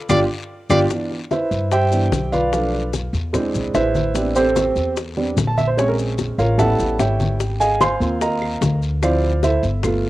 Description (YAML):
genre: Afro-Cuban jazz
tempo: 148 BPM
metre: 4/4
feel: straight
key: C major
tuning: A4 = 439 Hz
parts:
  - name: brilliant trumpet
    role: melody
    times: 0.1-0.8 s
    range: D5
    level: -25 LUFS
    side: equal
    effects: cassette tape
  - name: warm grand piano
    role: accompaniment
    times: 0.1-10.1 s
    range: E3 to C6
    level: -19 LUFS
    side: right 2 dB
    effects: cassette tape
  - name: upright bass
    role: bass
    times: 0.1-10.1 s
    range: G1 to G2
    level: -22 LUFS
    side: left 1 dB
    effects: none
  - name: bongos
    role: percussion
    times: 0.1-10.1 s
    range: none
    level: -27 LUFS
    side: left 6 dB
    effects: none
  - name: claves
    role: percussion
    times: 0.1-0.8, 7.8-10.0 s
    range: none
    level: -31 LUFS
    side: right 3 dB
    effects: none
  - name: congas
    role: percussion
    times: 0.1-10.1 s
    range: none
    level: -27 LUFS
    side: left 2 dB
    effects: none
  - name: guiro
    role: percussion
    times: 0.1-10.1 s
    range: none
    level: -39 LUFS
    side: left 5 dB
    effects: none
  - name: maracas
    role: percussion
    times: 0.1-10.0 s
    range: none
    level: -35 LUFS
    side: left 6 dB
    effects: none
room: light reverb, small room ambience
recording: home recording on cassette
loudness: -17 LUFS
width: side -16 dB against mid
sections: 0.9-10.1 A section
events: band accent 0.0-0.9; drum fill 0.3-0.9; grand piano solo 0.9-10.1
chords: 0.1 G5; 0.9 Cmaj7; 2.5 Bm7b5; 3.3 E7b13; 4.2 Am11; 5.8 Bbm7; 6.6 A13; 7.4 Ab69; 9.0 Dm9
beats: 0.10 0.50 | 0.91 1.31 1.72 2.12 | 2.53 2.94 3.34 3.75 | 4.15 4.56 4.96 5.37 | 5.78 6.18 6.59 6.99 | 7.40 7.81 8.21 8.62 | 9.02 9.43 9.84